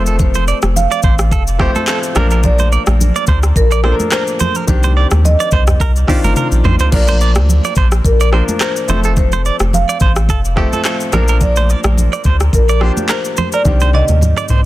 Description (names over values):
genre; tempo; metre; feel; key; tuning
afrobeats; 107 BPM; 4/4; swing 55% on 16ths; Bb major; A4 = 436 Hz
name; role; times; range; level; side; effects
marimba with medium mallets; melody; 0.0-14.7 s; Bb4 to F5; -21 LUFS; equal; digital delay
clear concert grand piano; accompaniment; 0.0-14.7 s; D3 to C5; -22 LUFS; left 1 dB; none
warm sub bass; bass; 0.0-14.7 s; F1 to Eb2; -13 LUFS; equal; none
direct-recorded clean electric guitar; riff; 0.1-14.6 s; G4 to D5; -21 LUFS; right 7 dB; tremolo, digital delay
afro-pop drum kit; drums; 0.1-14.6 s; crash cymbal, handclaps, hi-hat, kick drum, rim click, shaker, toms; -16 LUFS; equal; soft clipping on snare
congas; percussion; 0.2-14.4 s; none; -22 LUFS; right 2 dB; none
room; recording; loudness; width
digital ambience; dense, heavily limited modern master; -11 LUFS; side -16 dB against mid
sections
0.0-14.7 A section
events
drum fill 6.4-6.9, 13.7-14.7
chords
0.0 F; 2.2 Bb; 4.7 Cmadd9; 6.9 Bb; 8.9 F; 11.1 Bb; 13.7 Cmadd9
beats
| 0.20 0.76 1.32 1.88 | 2.44 3.00 3.56 4.12 | 4.68 5.24 5.80 6.36 | 6.92 7.49 8.05 8.61 | 9.17 9.73 10.29 10.85 | 11.41 11.97 12.53 13.09 | 13.65 14.21